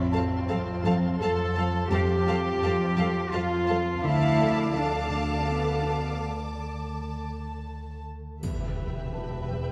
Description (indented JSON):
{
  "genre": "cinematic, suspense film score",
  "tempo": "84 BPM",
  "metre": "3/4",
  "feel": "straight",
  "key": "unclear",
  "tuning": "A4 = 442 Hz",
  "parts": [
    { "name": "flickering grainy texture", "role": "sustained chords", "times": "0.0-9.7 s", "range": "A4 to A5", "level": "-41 LUFS", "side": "equal", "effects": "built-in reverb" },
    { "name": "warm studio cello section", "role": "bass", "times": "0.0-9.7 s", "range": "E2 to A4", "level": "-31 LUFS", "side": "equal", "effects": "none" },
    { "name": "warm symphonic double bass section", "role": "bass", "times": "0.0-9.7 s", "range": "E1 to F2", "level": "-34 LUFS", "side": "equal", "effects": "none" },
    { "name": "metallic inharmonic drone", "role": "drone", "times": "0.0-9.7 s", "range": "D2 to F2", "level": "-37 LUFS", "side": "equal", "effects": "chorus, built-in reverb" },
    { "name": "clear studio violin section", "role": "melody", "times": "0.1-9.7 s", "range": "E5 to A5", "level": "-42 LUFS", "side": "equal", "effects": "none" },
    { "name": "dark studio violin section", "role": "second line", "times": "0.1-9.7 s", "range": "B4 to F5", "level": "-39 LUFS", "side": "equal", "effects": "none" },
    { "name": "dark symphonic viola section", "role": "accompaniment", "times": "0.1-9.7 s", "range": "A3 to A4", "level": "-38 LUFS", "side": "equal", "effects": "none" },
    { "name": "warm symphonic cello section", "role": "riff", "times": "0.1-9.7 s", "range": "E2 to D4", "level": "-34 LUFS", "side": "equal", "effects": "none" },
    { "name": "felt-muted upright piano", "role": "texture", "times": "0.1-4.1, 9.1-9.7 s", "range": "A5", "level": "-46 LUFS", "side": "equal", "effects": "none" },
    { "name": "warm symphonic violin section", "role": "texture", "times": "4.0-8.0 s", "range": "A5 to D6", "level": "-40 LUFS", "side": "equal", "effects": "none" },
    { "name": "triangle", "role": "percussion", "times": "8.4-9.7 s", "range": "none", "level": "-58 LUFS", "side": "equal", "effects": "none" },
    { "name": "impact", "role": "sound effects", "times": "8.4-9.7 s", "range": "none", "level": "-37 LUFS", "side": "equal", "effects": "none" }
  ],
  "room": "wet scoring stage reverb, RT60 1.4 s",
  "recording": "dark, warm production",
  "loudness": "-27 LUFS",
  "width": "mono",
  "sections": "0.0-8.4 A section; 8.4-9.7 A section",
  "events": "break 6.2-8.4; impact 8.4-9.7",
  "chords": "0.0 F; 4.0 Dm; 8.4 Em",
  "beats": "0.49 1.21 | 1.92 2.62 3.33 | 4.03 4.74 5.46 | 6.20 6.95 7.69 | 8.43 9.15"
}